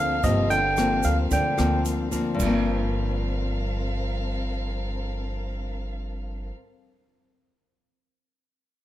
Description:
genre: bossa nova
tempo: 111 BPM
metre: 4/4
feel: straight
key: G minor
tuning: A4 = 439 Hz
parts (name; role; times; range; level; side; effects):
- barky tine electric piano; melody; 0.0-1.8 s; Eb5 to G5; -24 LUFS; equal; none
- warm trombone; second line; 0.0-1.8 s; C3 to D3; -32 LUFS; right 5 dB; none
- nylon-string guitar; accompaniment; 0.0-6.6 s; G2 to C4; -28 LUFS; left 3 dB; none
- dark studio violin section; sustained chords; 0.0-6.5 s; C4 to F5; -36 LUFS; left 1 dB; none
- upright bass; bass; 0.0-6.5 s; G1 to D2; -28 LUFS; right 1 dB; none
- open jazz drum kit; drums; 0.2-2.5 s; crash cymbal, hi-hat, kick drum, rim click; -32 LUFS; right 1 dB; none
- tube shaker; percussion; 0.2-2.5 s; none; -39 LUFS; right 9 dB; none
room: little or no reverb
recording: none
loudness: -23 LUFS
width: side -13 dB against mid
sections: 0.0-2.4 A section; 2.4-6.7 B section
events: none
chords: 0.0 Gm11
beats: | 0.23 0.77 1.31 1.85 | 2.39 2.93 3.47 4.01 | 4.55 5.09 5.63 6.17

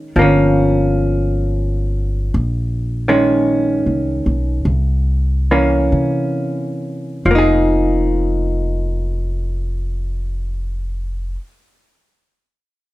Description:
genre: jazz ballad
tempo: 44-56 BPM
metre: 4/4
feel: swing 66% on 8ths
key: F minor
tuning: A4 = 444 Hz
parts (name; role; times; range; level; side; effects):
- vintage hollow-body jazz guitar; accompaniment; 0.0-11.5 s; Eb3 to Ab4; -16 LUFS; equal; none
- upright bass; bass; 0.2-11.3 s; F1 to C3; -18 LUFS; equal; none
room: light reverb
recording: none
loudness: -15 LUFS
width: side -17 dB against mid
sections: 0.0-7.3 A section; 7.3-12.7 B section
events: slowing down 0.0-7.3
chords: 0.1 Gm7b5; 2.3 Bbm11; 4.7 C7b9; 7.3 Fm7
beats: 0.15 1.22 | 2.33 3.47 4.67 5.93 | 7.27 8.63 9.98 11.34

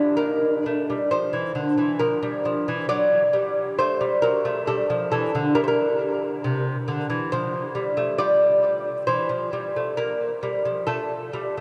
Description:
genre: classical, baroque-style dance for lute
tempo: 67 BPM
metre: 3/4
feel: rubato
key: F major from 5.6 s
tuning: A4 = 440 Hz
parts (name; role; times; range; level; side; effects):
- lute; solo; 0.0-11.6 s; C3 to D5; -23 LUFS; equal; diffuse ambient delay
room: wet cathedral reverb, RT60 6.0 s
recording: dreamy mix soaked in reverb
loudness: -23 LUFS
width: mono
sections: 0.0-11.6 A section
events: none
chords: 0.2 Gm; 2.9 D/F#; 4.7 G5; 5.6 C7/G; 7.3 F; 8.2 G5; 10.0 Fsus24; 10.9 F/A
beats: | 0.18 1.11 2.01 | 2.90 3.79 4.69 | 5.57 6.44 7.31 | 8.19 9.07 9.97 | 10.87

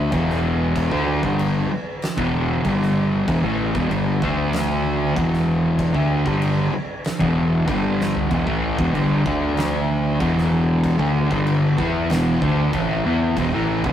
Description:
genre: stoner and doom metal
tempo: 95 BPM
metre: 4/4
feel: straight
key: E minor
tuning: A4 = 440 Hz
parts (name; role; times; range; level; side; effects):
- fuzz guitar; riff; 0.0-13.9 s; E2 to E4; -19 LUFS; left 1 dB; distortion
- fuzz fingered electric bass; bass; 0.0-13.9 s; E1 to E2; -24 LUFS; right 1 dB; overdrive
- oversized low-tuned drum kit; drums; 0.1-13.9 s; crash cymbal, kick drum, snare drum, toms; -28 LUFS; right 1 dB; none
room: light reverb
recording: rough rehearsal-room recording, warm saturation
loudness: -18 LUFS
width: side -10 dB against mid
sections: 0.0-13.9 A section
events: drum fill 8.0-8.3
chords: 0.1 Em; 2.7 G5; 3.3 Em; 4.2 D5; 5.2 Em; 7.7 G5; 8.3 Em; 9.3 D5; 10.2 Em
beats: 0.13 | 0.76 1.39 2.02 2.65 | 3.28 3.91 4.54 5.17 | 5.80 6.42 7.05 7.68 | 8.31 8.94 9.57 10.21 | 10.84 11.47 12.10 12.74 | 13.37

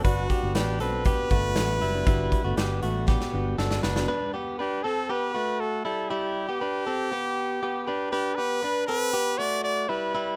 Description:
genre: jangly indie pop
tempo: 119 BPM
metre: 4/4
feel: straight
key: E minor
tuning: A4 = 435 Hz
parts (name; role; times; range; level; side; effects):
- brilliant trumpet; melody; 0.0-10.4 s; F#4 to D5; -31 LUFS; equal; none
- fingerpicked plugged-in steel-string acoustic guitar; accompaniment; 0.0-4.1 s; G3 to F#4; -36 LUFS; equal; none
- direct-recorded clean electric guitar; arpeggios; 0.0-10.4 s; G3 to B4; -32 LUFS; equal; none
- vintage muted fingered electric bass; bass; 0.0-4.1 s; F#1 to B1; -31 LUFS; equal; none
- big rock drum kit; drums; 0.0-4.1 s; hi-hat, kick drum, snare drum; -30 LUFS; equal; none
room: little or no reverb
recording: rough home demo mix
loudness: -27 LUFS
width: mono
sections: 0.0-4.1 A section; 4.1-10.4 B section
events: drum fill 3.1-4.1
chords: 0.0 Bm7; 4.1 Em7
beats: | 0.05 0.56 1.06 1.56 | 2.07 2.58 3.08 3.58 | 4.09 4.59 5.10 5.60 | 6.11 6.61 7.12 7.62 | 8.13 8.63 9.14 9.64 | 10.15

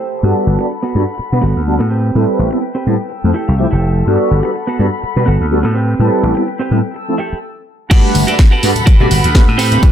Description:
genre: filtered disco house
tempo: 125 BPM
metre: 4/4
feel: swing 55% on 16ths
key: G major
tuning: A4 = 440 Hz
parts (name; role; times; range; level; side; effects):
- warm chamber violin section; sustained chords; 0.0-9.9 s; C4 to E6; -24 LUFS; left 1 dB; sidechain pumping, low-pass filter
- twelve-string electric guitar; riff; 0.0-9.9 s; B3 to G5; -20 LUFS; right 4 dB; sidechain pumping, low-pass filter
- mellow synth brass; accompaniment; 0.2-9.9 s; F3 to F#5; -17 LUFS; equal; chorus, phaser, cassette tape, sidechain pumping, low-pass filter
- slap bass; bass; 0.2-9.9 s; F1 to B2; -14 LUFS; equal; sidechain pumping, low-pass filter
- electronic kick drum; drums; 7.9-9.9 s; none; -8 LUFS; equal; none
- house drum kit; drums; 7.9-9.9 s; crash cymbal, hi-hat, snare drum; -20 LUFS; equal; sidechain pumping on hats, sidechain pumping on cymbals
- tambourine and congas; percussion; 7.9-9.9 s; none; -21 LUFS; left 3 dB; sidechain pumping on perc, low-pass filter on perc
room: little or no reverb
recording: none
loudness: -11 LUFS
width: side -10 dB against mid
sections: 0.0-7.9 A section; 7.9-9.9 B section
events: filter sweep 0.0-7.9; clean electric guitar fill 3.1-4.1; drop 7.9-9.9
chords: 0.2 Gmaj9; 1.9 Am9; 3.1 Fmaj9; 4.1 Gmaj9; 5.8 Am9; 7.0 Fmaj9 (rootless); 7.9 Gmaj9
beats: | 0.23 0.71 1.19 1.67 | 2.15 2.63 3.11 3.59 | 4.07 4.55 5.03 5.51 | 5.99 6.47 6.95 7.43 | 7.91 8.39 8.87 9.35 | 9.83

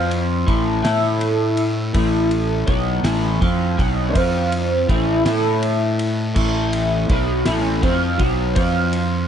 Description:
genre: psychedelic rock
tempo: 54 BPM (dotted quarters)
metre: 6/8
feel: straight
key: A minor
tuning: A4 = 440 Hz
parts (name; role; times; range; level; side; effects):
- electric guitar through a small old amp; riff; 0.0-9.3 s; A2 to A4; -19 LUFS; equal; flanger
- fuzz fingered electric bass; bass; 0.0-9.3 s; A1 to A2; -22 LUFS; equal; overdrive
- cloth-damped thuddy drum kit; drums; 0.1-9.1 s; crash cymbal, kick drum, ride cymbal, snare drum; -24 LUFS; equal; none
room: light reverb, studio ambience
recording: nothing above 10.8 kHz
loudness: -16 LUFS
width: side -8 dB against mid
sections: 0.0-9.3 A section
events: none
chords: 0.5 A5; 4.2 F5; 4.9 A5; 8.6 F5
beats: 0.84 | 1.95 3.05 | 4.15 5.26 | 6.36 7.46 | 8.56

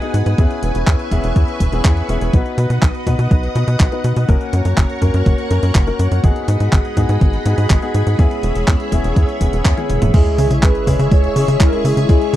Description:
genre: italo disco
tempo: 123 BPM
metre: 4/4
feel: straight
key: unclear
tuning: A4 = 441 Hz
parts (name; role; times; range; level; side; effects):
- string machine, full ensemble; sustained chords; 0.0-12.4 s; G#4 to D#6; -24 LUFS; equal; ensemble chorus
- clear concert grand piano; stabs; 0.0-12.4 s; G#3 to B4; -23 LUFS; left 4 dB; tape echo
- clean 12-bit digital drum machine; drums; 0.0-12.4 s; crash cymbal, handclaps, hi-hat, tambourine, toms; -23 LUFS; right 1 dB; none
- tight sequencer bass; bass; 0.1-12.4 s; E1 to C#3; -17 LUFS; equal; none
- electronic kick drum; drums; 0.4-12.2 s; none; -14 LUFS; equal; none
- mellow synth brass; melody; 10.1-12.4 s; E4 to C#5; -20 LUFS; right 1 dB; chorus, tape echo
- sub drop; sound effects; 10.2-12.1 s; none; -22 LUFS; equal; none
room: little or no reverb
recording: dry, close 1970s-style studio recording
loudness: -13 LUFS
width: side -13 dB against mid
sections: 0.0-10.1 A section; 10.1-12.4 B section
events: band accent 9.7; drum fill 9.8-10.1; impact 10.1-12.1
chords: 0.4 E6; 2.3 B; 4.3 F#; 6.2 G#m7; 8.2 E6; 10.1 C#m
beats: | 0.38 0.87 1.36 1.85 | 2.33 2.82 3.31 3.80 | 4.29 4.77 5.26 5.75 | 6.24 6.72 7.21 7.70 | 8.19 8.68 9.16 9.65 | 10.14 10.63 11.12 11.60 | 12.09

